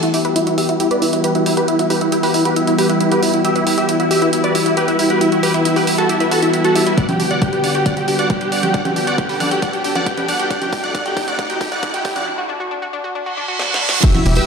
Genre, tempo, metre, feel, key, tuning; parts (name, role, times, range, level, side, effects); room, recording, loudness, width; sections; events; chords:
uplifting trance; 136 BPM; 4/4; straight; E minor; A4 = 436 Hz
big supersaw lead; melody; 0.0-14.5 s; E4 to F#5; -18 LUFS; equal; sidechain pumping, low-pass filter, dub echo
supersaw stab; second line; 0.0-14.5 s; E5 to F#6; -24 LUFS; equal; sidechain pumping, low-pass filter, ping-pong delay
lush unison pad; sustained chords; 0.0-14.5 s; C3 to A4; -21 LUFS; left 1 dB; chorus, sidechain pumping
analog pluck; arpeggios; 0.0-14.4 s; D4 to B4; -24 LUFS; left 1 dB; chorus, sidechain pumping, ping-pong delay
house drum kit; drums; 0.0-14.5 s; congas, crash cymbal, hi-hat, snare drum; -24 LUFS; right 2 dB
riser and reverse cymbal; sound effects; 0.0-14.0 s; -27 LUFS; right 3 dB
electronic kick drum; drums; 7.0-14.1 s; -18 LUFS; equal
tambourine; percussion; 14.0-14.4 s; -30 LUFS; right 4 dB
tight sequencer bass; bass; 14.3-14.4 s; E1; -14 LUFS; equal; sidechain pumping
wet digital room reverb, RT60 1.1 s, digital ambience; played on a big sound system in a bare room, large studio reverb, high-pass filter; -14 LUFS; side -5 dB against mid
0.0-14.0 A section
build-up 0.0-14.0; filter sweep on supersaw synth 0.0-14.0; filter sweep on synth pluck 0.0-14.0; filter sweep 0.0-14.0; drum fill 7.0-12.3, 13.6-14.0; reverse cymbal 13.3-14.0
0.0 Emadd9; 7.0 Gmaj7; 10.5 Am7